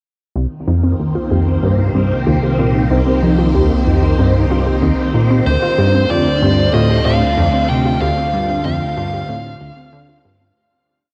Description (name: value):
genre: ambient, sequencer-driven space music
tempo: 94 BPM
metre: 4/4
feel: straight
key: C dorian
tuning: A4 = 437 Hz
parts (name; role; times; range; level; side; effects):
- phased string machine; sustained chords; 0.4-10.6 s; D3 to C5; -22 LUFS; equal; ensemble chorus, phaser
- warbly dusty pluck; arpeggios; 0.4-10.5 s; C4 to G4; -24 LUFS; equal; chorus, delay
- plucky analog bass; riff; 0.4-10.5 s; C2 to D3; -19 LUFS; equal; delay
- analog drone; bass; 1.1-10.5 s; C2 to D2; -23 LUFS; equal; chorus
- dark smooth lead guitar; melody; 5.5-10.2 s; C5 to G5; -21 LUFS; equal; overdrive, delay
room: wet shimmer reverb, RT60 7.4 s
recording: worn, warbling old tape, cassette tape, warbly pitch drift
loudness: -15 LUFS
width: mono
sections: 0.4-10.6 A section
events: fade-out 7.2-10.6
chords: 0.4 Cm7; 5.5 Dm7